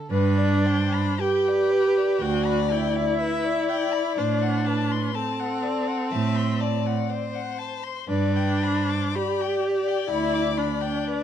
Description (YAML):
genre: classical, slow romantic movement for string quartet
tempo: 53-64 BPM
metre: 4/4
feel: rubato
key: G major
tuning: A4 = 440 Hz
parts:
  - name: rich violin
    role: second line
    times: 0.0-11.2 s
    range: A4 to E5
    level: -30 LUFS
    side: left 7 dB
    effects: none
  - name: warm violin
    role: melody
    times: 0.1-11.2 s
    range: B4 to D6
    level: -30 LUFS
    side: left 11 dB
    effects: none
  - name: warm viola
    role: accompaniment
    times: 0.1-11.2 s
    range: C4 to G4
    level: -25 LUFS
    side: right 1 dB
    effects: none
  - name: rich cello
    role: bass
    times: 0.1-10.9 s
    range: D2 to A2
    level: -26 LUFS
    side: right 4 dB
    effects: none
room: light reverb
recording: dark, warm production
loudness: -22 LUFS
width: side -9 dB against mid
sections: 0.1-11.2 A section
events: none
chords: 0.1 G; 4.2 D7/A; 8.1 G